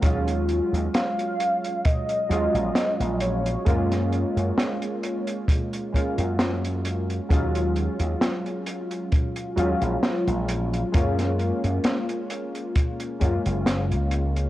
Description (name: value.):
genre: vaporwave.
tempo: 66 BPM.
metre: 4/4.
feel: swing 54% on 16ths.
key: Gb major.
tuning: A4 = 441 Hz.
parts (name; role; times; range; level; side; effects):
warbly lo-fi synth keys; accompaniment; 0.0-14.5 s; Gb3 to F4; -27 LUFS; equal; lush chorus, tape echo.
slap bass with an envelope filter; bass; 0.0-14.5 s; Gb1 to Gb2; -25 LUFS; equal; tube saturation.
kick drum; drums; 0.0-13.4 s; none; -23 LUFS; equal; none.
open jazz drum kit; drums; 0.0-14.5 s; hi-hat, snare drum; -28 LUFS; equal; none.
warm velvety synth lead; melody; 0.9-4.1 s; Db5 to F5; -28 LUFS; equal; chorus, tape echo.
room: light reverb, small room ambience.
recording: worn, warbling old tape, cassette tape, warbly pitch drift.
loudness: -22 LUFS.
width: side -15 dB against mid.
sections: 0.0-14.5 A section.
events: none.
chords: 0.0 Ebm11; 3.7 Gbmaj7; 7.3 Ebm11; 10.9 Gbmaj7.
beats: | 0.03 0.94 1.85 2.76 | 3.67 4.58 5.49 6.40 | 7.30 8.21 9.12 10.03 | 10.94 11.85 12.76 13.67.